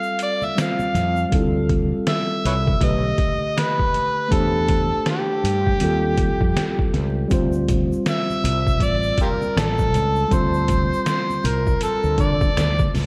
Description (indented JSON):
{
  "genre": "hip hop, jazz-hop",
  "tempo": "80 BPM",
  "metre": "4/4",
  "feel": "swing 60% on 16ths",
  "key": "D minor",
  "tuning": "A4 = 440 Hz",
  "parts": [
    { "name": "overdriven harmonica", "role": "melody", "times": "0.0-13.0 s", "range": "F4 to F5", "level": "-25 LUFS", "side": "equal", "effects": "analog delay" },
    { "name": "mellow tine electric piano", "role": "accompaniment", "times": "0.0-13.1 s", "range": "D3 to C5", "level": "-28 LUFS", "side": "equal", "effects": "none" },
    { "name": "tube shaker and congas", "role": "percussion", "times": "0.0-1.3, 7.3-13.1 s", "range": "none", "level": "-35 LUFS", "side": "equal", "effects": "none" },
    { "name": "trip hop sampler-style drum kit", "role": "drums", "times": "0.2-13.1 s", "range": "hi-hat, kick drum, snare drum", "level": "-25 LUFS", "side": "equal", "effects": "none" },
    { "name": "fretless electric bass", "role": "bass", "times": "0.9-13.1 s", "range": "A1 to D3", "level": "-25 LUFS", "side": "equal", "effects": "none" }
  ],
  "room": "moderate plate reverb, RT60 1.5 s",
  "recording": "dreamy mix soaked in reverb, vinyl crackle",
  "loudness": "-20 LUFS",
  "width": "mono",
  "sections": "0.0-1.3 A section; 1.3-13.1 B section",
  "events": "break 0.0-1.3; harmonica solo 0.0-1.3",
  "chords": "0.0 Dm7 (rootless); 1.3 Dm7; 2.8 B7alt; 4.3 C69/E; 5.8 Eb7#11; 7.3 Dm7"
}